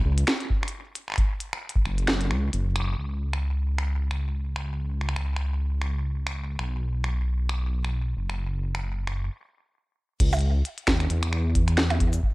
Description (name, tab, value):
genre	IDM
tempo	133 BPM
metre	4/4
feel	swing 56% on 16ths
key	C# minor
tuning	A4 = 439 Hz
part	dark detuned saw bass	bass	0.0-12.2 s	F#1 to E2	-25 LUFS	equal	none
part	glitchy drum kit	drums	0.2-12.2 s	crash cymbal, finger snaps, hi-hat, percussion blips, shaker, snare drum	-29 LUFS	equal	analog delay
part	electronic kick drum	drums	0.5-1.8, 10.2-12.3 s	none	-24 LUFS	equal	none
room	light reverb, digital ambience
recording	echo-heavy mix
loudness	-24 LUFS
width	side -22 dB against mid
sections	0.0-3.0 A section; 3.0-10.2 B section; 10.2-12.3 C section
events	break 2.5-3.0; band accent 2.8; stop 9.3-10.2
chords	none